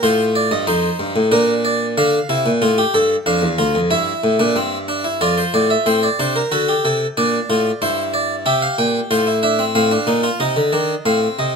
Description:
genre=classical, baroque-style 3-part fugue for harpsichord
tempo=93 BPM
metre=3/4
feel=straight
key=unclear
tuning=A4 = 442 Hz
part: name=harpsichord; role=solo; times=0.0-11.6 s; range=D2 to G5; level=-15 LUFS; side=equal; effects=none
room=moderate stone room reverb, RT60 1.2 s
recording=close, detailed microphones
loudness=-15 LUFS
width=side -5 dB against mid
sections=0.0-5.9 A section; 5.9-11.6 B section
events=none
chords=0.0 Adim; 1.3 Bb; 2.0 Dm; 3.9 Edim/G; 5.2 Dm/F; 5.9 D7/A; 7.2 Bbmaj7; 7.8 C7/G; 9.1 F/A; 9.7 Adim

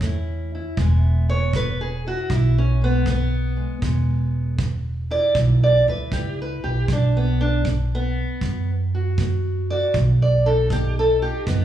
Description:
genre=acoustic country blues, solo or duo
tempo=78 BPM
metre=4/4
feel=swing 66% on 8ths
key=E mixolydian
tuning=A4 = 439 Hz
part: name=fingerpicked steel-string acoustic guitar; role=melody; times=0.0-11.6 s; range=E2 to D5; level=-23 LUFS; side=equal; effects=none
part: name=upright bass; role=bass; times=0.0-11.6 s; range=E1 to F#2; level=-20 LUFS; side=right 1 dB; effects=none
part: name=kick drum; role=drums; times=0.0-11.6 s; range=none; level=-27 LUFS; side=right 2 dB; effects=none
room=moderate recital hall reverb, RT60 1.8 s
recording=recorded in a church or concert hall, small room reverb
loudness=-18 LUFS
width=side -11 dB against mid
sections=0.0-11.6 A section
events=steel-string acoustic guitar solo 0.0-11.6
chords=0.0 A; 0.8 E; 6.9 B

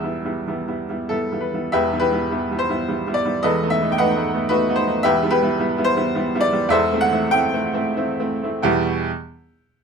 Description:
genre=classical, romantic character piece for solo piano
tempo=82-116 BPM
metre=3/4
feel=rubato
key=E minor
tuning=A4 = 440 Hz
part: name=bright baby grand piano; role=solo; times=0.0-9.1 s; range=E1 to E6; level=-18 LUFS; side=equal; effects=none
room=moderate small room reverb, RT60 0.6 s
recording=none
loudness=-18 LUFS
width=side -6 dB against mid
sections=0.0-1.7 A section; 1.7-8.7 B section; 8.7-9.8 C section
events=slowing down 4.2-8.7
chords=0.0 Em; 3.4 B7/E; 5.0 Em; 6.7 Am/E; 8.7 Em

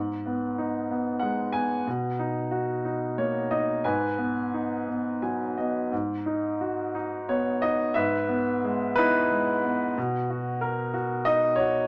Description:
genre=classical, lyrical solo piano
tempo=59 BPM (dotted quarters)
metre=6/8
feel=uneven beats, rubato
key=G# minor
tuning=A4 = 440 Hz
part: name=clear baby grand piano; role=solo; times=0.0-11.9 s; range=G#2 to G#5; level=-27 LUFS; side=equal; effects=none
room=moderate small room reverb, RT60 0.5 s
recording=none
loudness=-27 LUFS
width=mono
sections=0.0-5.9 A section; 5.9-11.9 A section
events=grand piano fill 4.9-5.9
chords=0.0 G#m7; 1.9 Bmaj7; 3.8 G#m7; 8.0 Emaj7/G#; 10.0 Bmaj7

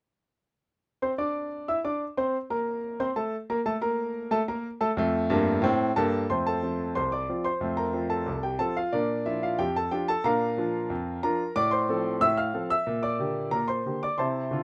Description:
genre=ragtime piano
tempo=91 BPM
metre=2/4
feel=straight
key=F major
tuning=A4 = 440 Hz
part: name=warm concert grand piano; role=solo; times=1.0-14.6 s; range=C2 to F6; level=-28 LUFS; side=equal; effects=none
room=light reverb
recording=rough home demo mix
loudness=-28 LUFS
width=mono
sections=1.0-6.3 A section; 6.3-14.6 B section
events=none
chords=1.0 F; 8.9 Bb; 11.6 F/A; 12.9 Gm/Bb

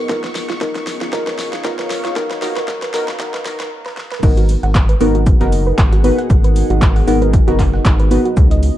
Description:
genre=deep house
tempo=116 BPM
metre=4/4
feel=swing 55% on 16ths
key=G# dorian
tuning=A4 = 440 Hz
part: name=dark analog pad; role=sustained chords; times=0.0-8.8 s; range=B2 to A#4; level=-26 LUFS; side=left 1 dB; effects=chorus, sidechain pumping
part: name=deep mellow chord stab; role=stabs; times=0.0-8.2 s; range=B3 to B4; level=-20 LUFS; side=equal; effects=chorus, sidechain pumping, tape echo
part: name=string machine, violins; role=texture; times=0.0-3.7 s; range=C#6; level=-35 LUFS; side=equal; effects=ensemble chorus, sidechain pumping
part: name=warbly tape-like pad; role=texture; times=0.0-8.8 s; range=B3 to F#5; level=-29 LUFS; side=left 1 dB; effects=chorus, built-in reverb, phaser, sidechain pumping
part: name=deep house drum kit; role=drums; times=0.1-8.7 s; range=crash cymbal, handclaps, hi-hat, snare drum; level=-26 LUFS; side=equal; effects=overdrive, vintage 12-bit sampler grit
part: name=electronic kick drum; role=drums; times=0.1-8.5 s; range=none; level=-14 LUFS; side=equal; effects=vintage 12-bit sampler grit
part: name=shekere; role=percussion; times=0.1-3.7 s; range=none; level=-33 LUFS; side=left 3 dB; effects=none
part: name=soft round pluck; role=arpeggios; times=0.2-8.6 s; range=E#4 to F#5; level=-27 LUFS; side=right 4 dB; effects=chorus, sidechain pumping, tape echo
part: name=rubbery square bass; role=bass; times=4.2-8.7 s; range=F#1 to C#2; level=-16 LUFS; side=equal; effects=tube saturation, sidechain pumping
part: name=breakbeat sampler-style drum kit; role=drums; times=4.2-8.8 s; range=hi-hat, shaker, snare drum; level=-37 LUFS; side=equal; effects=none
room=digital ambience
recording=dark, warm production, high-pass filter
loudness=-13 LUFS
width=side -13 dB against mid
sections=0.0-4.2 A section; 4.2-8.8 B section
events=build-up 0.0-4.2; drum fill 0.0-3.7, 3.8-4.2; filter sweep on synth stab 0.0-4.2; filter sweep on analog synth pad 0.0-4.2; break 3.7-4.2; drop 4.2-8.8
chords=0.1 C#9; 2.2 Bmaj9#11; 4.2 G#m7

